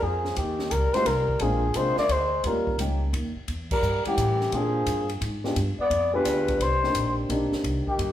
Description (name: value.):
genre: jazz, small-group swing and bop.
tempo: 173 BPM.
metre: 3/4.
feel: swing 65% on 8ths.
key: Bb mixolydian.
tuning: A4 = 439 Hz.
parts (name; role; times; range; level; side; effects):
trumpet with bucket mute; melody; 0.0-8.1 s; G4 to D5; -25 LUFS; left 2 dB; none.
breathy tenor saxophone; second line; 0.0-8.1 s; Eb3 to B3; -34 LUFS; right 4 dB; none.
upright bass; bass; 0.0-8.1 s; Bb1 to Bb2; -28 LUFS; equal; none.
open jazz drum kit; drums; 0.2-8.1 s; crash cymbal, hi-hat, kick drum, ride cymbal, snare drum; -34 LUFS; equal; none.
dark baby grand piano; accompaniment; 0.9-7.8 s; G3 to Gb5; -29 LUFS; left 1 dB; none.
room: wet large studio reverb, RT60 1.0 s.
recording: band playing live in one room.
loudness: -23 LUFS.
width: side -12 dB against mid.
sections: 0.0-8.1 A section.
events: band accent 3.7.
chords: 0.4 Eb7; 1.4 Bb7; 2.4 Eb7; 3.5 Edim7; 4.5 Bb7; 5.6 G7b9; 6.6 Cm7.